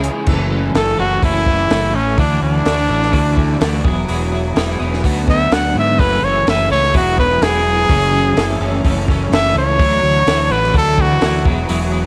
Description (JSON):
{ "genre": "indie rock", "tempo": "126 BPM", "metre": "4/4", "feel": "straight", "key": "F# minor", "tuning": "A4 = 441 Hz", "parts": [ { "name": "raw garage guitar", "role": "riff", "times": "0.0-12.1 s", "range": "E3 to G#4", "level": "-26 LUFS", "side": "equal", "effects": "overdrive, ensemble chorus" }, { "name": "twelve-string electric guitar", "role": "riff", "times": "0.0-12.1 s", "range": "F#2 to A4", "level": "-24 LUFS", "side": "equal", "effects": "tremolo" }, { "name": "fuzz fingered electric bass", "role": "bass", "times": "0.0-12.1 s", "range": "E1 to G#2", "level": "-21 LUFS", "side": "equal", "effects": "overdrive" }, { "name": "compact cocktail drum kit", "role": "drums", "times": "0.0-11.8 s", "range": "crash cymbal, hi-hat, kick drum, snare drum", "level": "-21 LUFS", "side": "equal", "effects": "none" }, { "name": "bright trumpet", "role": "melody", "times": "0.8-11.5 s", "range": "C#4 to F#5", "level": "-19 LUFS", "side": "equal", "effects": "cassette tape, plate reverb" } ], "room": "light reverb", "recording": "home recording on cassette", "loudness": "-15 LUFS", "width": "mono", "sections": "0.3-12.1 A section", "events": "trumpet solo 0.3-12.1", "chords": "0.3 F#m7; 2.2 Dadd9; 3.9 Eadd9; 5.0 Bm/D; 6.0 F#m7; 6.9 Eadd9; 7.9 F#m7; 9.8 Dadd9; 11.5 Eadd9" }